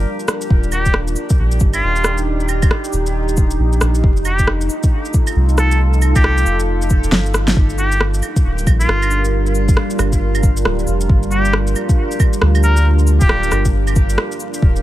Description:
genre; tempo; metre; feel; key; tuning
future garage; 136 BPM; 4/4; swing 61% on 16ths; G minor; A4 = 439 Hz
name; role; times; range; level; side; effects
deep dark ambient pad; sustained chords; 0.0-14.8 s; G3 to Bb4; -22 LUFS; right 1 dB; chorus, built-in reverb, sidechain pumping
soft dub sub bass; bass; 0.0-14.8 s; D1 to D2; -16 LUFS; equal; tube saturation, sidechain pumping
electronic shaker, rim click, cabasa, claves and snare drum; drums; 0.2-14.8 s; none; -21 LUFS; equal; none
electronic kick drum; drums; 0.5-14.7 s; none; -14 LUFS; equal; none
trumpet with straight mute; melody; 0.7-13.7 s; F4 to Bb4; -23 LUFS; equal; tape echo
drifting glass-harmonics texture; texture; 14.7-14.8 s; F5; -40 LUFS; right 2 dB; none
room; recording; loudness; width
little or no reverb; vinyl crackle; -13 LUFS; side -14 dB against mid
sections
0.0-7.6 A section; 7.6-14.8 A section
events
drum fill 7.1-7.6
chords
0.0 Gm7; 0.5 Ebmaj7; 4.0 F7; 7.6 Gm7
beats
0.07 | 0.51 0.95 1.39 1.83 | 2.27 2.71 3.15 3.60 | 4.04 4.48 4.92 5.36 | 5.80 6.24 6.68 7.12 | 7.57 8.01 8.45 8.89 | 9.33 9.77 10.21 10.65 | 11.10 11.54 11.98 12.42 | 12.86 13.30 13.74 14.18 | 14.62

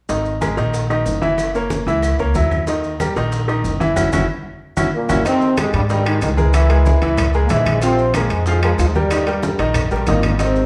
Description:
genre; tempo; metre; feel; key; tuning
latin, salsa; 186 BPM; 4/4; straight; Ab major; A4 = 440 Hz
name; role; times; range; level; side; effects
bright upright piano; accompaniment; 0.1-10.7 s; Eb3 to F5; -22 LUFS; equal; none
upright bass; bass; 0.1-10.7 s; Gb1 to Ab2; -22 LUFS; equal; none
bongos; percussion; 0.1-10.7 s; none; -33 LUFS; equal; none
congas; percussion; 0.1-10.7 s; none; -28 LUFS; equal; none
maracas; percussion; 0.1-10.7 s; none; -39 LUFS; equal; none
claves; percussion; 0.4-10.4 s; none; -34 LUFS; equal; none
clear trombone section; melody; 5.0-10.7 s; G2 to F4; -22 LUFS; equal; none
timbales; percussion; 5.3-10.6 s; none; -31 LUFS; equal; none
room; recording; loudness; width
moderate large studio reverb, RT60 1.1 s; heard from further back in the room, faint mains hum; -17 LUFS; mono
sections
0.1-5.3 A section; 5.3-10.7 B section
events
band accent 4.0-5.3; drum fill 4.3-5.3, 9.8-10.4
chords
0.1 Absus2; 1.4 Gb7; 2.7 Eb; 4.0 Gb7; 5.3 Abmaj7; 6.5 Dbm6; 7.8 Bb5; 9.1 Eb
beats
| 0.10 0.42 0.74 1.06 | 1.39 1.71 2.03 2.35 | 2.68 3.00 3.32 3.65 | 3.97 4.29 4.61 4.93 | 5.25 5.58 5.90 6.22 | 6.54 6.86 7.18 7.50 | 7.83 8.15 8.47 8.79 | 9.11 9.43 9.75 10.08 | 10.40

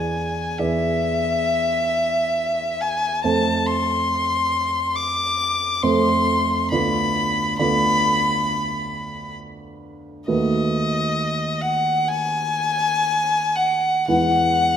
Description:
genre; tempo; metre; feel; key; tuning
classical, romantic duo for violin and grand piano; 56-71 BPM; 4/4; rubato; unclear; A4 = 443 Hz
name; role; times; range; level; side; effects
rich violin; melody; 0.0-14.8 s; D#5 to D6; -20 LUFS; left 2 dB; none
dark grand piano; accompaniment; 0.0-14.8 s; D2 to D5; -24 LUFS; right 3 dB; none
room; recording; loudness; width
wet recital hall reverb, RT60 1.8 s; none; -18 LUFS; side -9 dB against mid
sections
0.0-14.8 A section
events
none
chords
0.0 E7; 3.2 F; 6.7 Bdim/D; 10.3 B7/D#; 14.1 E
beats
0.60 1.48 2.36 | 3.24 4.09 4.96 5.83 | 6.72 7.59 8.47 9.38 | 10.28 11.17 12.08 13.04 | 14.08

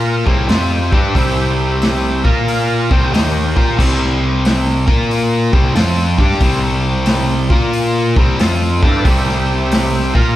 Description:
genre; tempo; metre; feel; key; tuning
blues rock power trio and southern rock; 91 BPM; 4/4; swing 66% on 8ths; C mixolydian; A4 = 439 Hz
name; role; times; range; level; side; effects
overdriven tonewheel organ; sustained chords; 0.0-3.8, 8.8-10.4 s; A3 to G5; -24 LUFS; right 3 dB; slow rotary speaker, chorus vibrato
distorted electric guitar; riff; 0.0-10.4 s; C3 to Bb4; -16 LUFS; left 1 dB; distortion
fuzz picked electric bass; bass; 0.0-10.4 s; C2 to Bb2; -18 LUFS; equal; overdrive
vintage drum kit; drums; 0.3-10.3 s; crash cymbal, hi-hat, kick drum, snare drum; -16 LUFS; equal; none
room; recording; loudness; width
moderate large studio reverb, RT60 1.1 s; band playing live in one room; -12 LUFS; side -14 dB against mid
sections
0.0-3.8 A section; 3.8-10.4 A section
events
none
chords
0.2 C; 2.1 Bb5; 2.8 C5; 4.8 Bb5; 5.4 C5; 7.4 Bb5; 8.1 C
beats
0.49 | 1.15 1.81 2.47 3.13 | 3.79 4.45 5.11 5.77 | 6.43 7.09 7.75 8.41 | 9.07 9.73

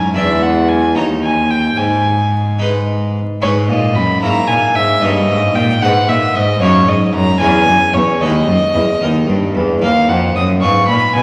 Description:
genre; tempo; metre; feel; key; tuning
classical, baroque-style sonata movement with continuo; 75 BPM (dotted quarters); 6/8; straight; G# minor; A4 = 440 Hz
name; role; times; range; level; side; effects
warm violin; melody; 0.0-11.2 s; C#5 to Eb6; -18 LUFS; equal; none
harpsichord; accompaniment; 0.0-11.2 s; D#2 to D5; -20 LUFS; equal; none
rich cello; bass; 0.0-11.2 s; Eb2 to Cb3; -18 LUFS; equal; none
room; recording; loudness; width
wet recital hall reverb, RT60 1.7 s; vinyl crackle; -14 LUFS; mono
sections
0.0-3.4 A section; 3.4-11.2 B section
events
none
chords
0.1 E7; 0.9 D#7; 1.8 G#m; 4.2 A#m7b5/G#; 5.0 D#7/G; 5.8 G#m; 6.6 D#m/F#; 7.4 C#m/E; 8.2 G#m/D#; 9.0 D#; 9.8 Ebm; 10.6 Fdim/Ab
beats
| 0.14 0.94 | 1.76 2.58 | 3.41 4.21 | 5.00 5.80 | 6.59 7.39 | 8.20 9.01 | 9.82 10.62

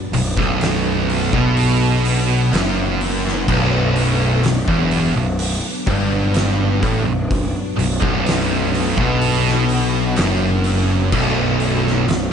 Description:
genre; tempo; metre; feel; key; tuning
stoner and doom metal; 63 BPM; 4/4; straight; B minor; A4 = 440 Hz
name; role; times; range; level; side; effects
string machine, full ensemble; sustained chords; 0.0-12.3 s; F#3 to D4; -28 LUFS; equal; none
thick fuzz guitar; riff; 0.1-12.3 s; B1 to B2; -22 LUFS; left 6 dB; distortion
thick fuzz guitar; riff; 0.1-12.3 s; B1 to B2; -21 LUFS; right 7 dB; distortion
tight distorted guitar; riff; 0.1-12.3 s; B1 to B2; -23 LUFS; equal; distortion
fuzz picked electric bass; bass; 0.1-12.3 s; B0 to B1; -22 LUFS; equal; overdrive
oversized low-tuned drum kit; drums; 0.1-12.3 s; crash cymbal, hi-hat, kick drum, snare drum; -23 LUFS; equal; none
room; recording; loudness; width
small room ambience; nothing above 10.3 kHz; -15 LUFS; side -7 dB against mid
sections
0.0-12.3 A section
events
none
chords
0.0 Bm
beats
0.61 1.57 2.53 | 3.48 4.44 5.39 6.35 | 7.30 8.26 9.21 10.17 | 11.12 12.08

